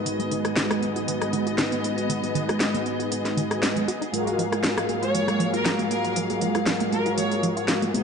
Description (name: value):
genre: nu-disco, nu disco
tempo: 118 BPM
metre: 4/4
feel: swing 54% on 16ths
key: F# major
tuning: A4 = 443 Hz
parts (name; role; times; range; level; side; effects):
- mellow synth brass; accompaniment; 0.0-8.0 s; G#3 to B4; -26 LUFS; equal; chorus, digital delay
- dark symphonic string section; sustained chords; 0.0-8.0 s; F#3 to E#5; -30 LUFS; left 2 dB; none
- wide unison pluck; arpeggios; 0.1-8.0 s; D#3 to F#4; -30 LUFS; moving between left 1 dB and right 6 dB; auto-pan, digital delay
- house drum kit; drums; 0.1-8.0 s; hi-hat, rim click, snare drum; -28 LUFS; left 1 dB; none
- clear chamber violin section; melody; 5.0-7.4 s; A#4 to C#5; -30 LUFS; right 1 dB; digital delay
room: moderate lush hall reverb, RT60 2.0 s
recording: dark, warm production, nothing above 10.4 kHz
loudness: -22 LUFS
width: side -6 dB against mid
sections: 0.0-8.0 A section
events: filter sweep on synth arpeggio sound 0.0-8.0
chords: 0.0 B6; 4.1 F#maj9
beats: | 0.06 0.57 1.07 1.58 | 2.09 2.60 3.11 3.62 | 4.12 4.63 5.14 5.65 | 6.16 6.67 7.18 7.68